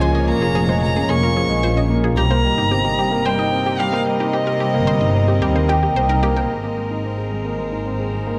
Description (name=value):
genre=piano and strings electronica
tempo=111 BPM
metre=4/4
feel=straight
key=Ab major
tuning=A4 = 440 Hz
part: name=dark violin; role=melody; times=0.0-6.0 s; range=Eb5 to Db6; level=-26 LUFS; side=equal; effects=none
part: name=warm chamber string section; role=sustained chords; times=0.0-8.4 s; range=Bb2 to Eb5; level=-28 LUFS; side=equal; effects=none
part: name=analog pluck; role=arpeggios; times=0.0-6.4 s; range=G4 to G5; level=-30 LUFS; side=equal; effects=chorus, tape echo
part: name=dark upright piano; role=riff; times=0.0-8.4 s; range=F3 to Ab4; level=-23 LUFS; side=equal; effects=tape echo
part: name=dark chamber double bass section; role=bass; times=0.0-8.4 s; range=F1 to Eb2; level=-23 LUFS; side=equal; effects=none
room=light reverb, studio ambience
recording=none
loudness=-19 LUFS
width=mono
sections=0.0-6.5 A section; 6.5-8.4 B section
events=drop 0.0-6.5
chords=0.0 Bbm7; 2.2 Cm7; 6.5 Abadd9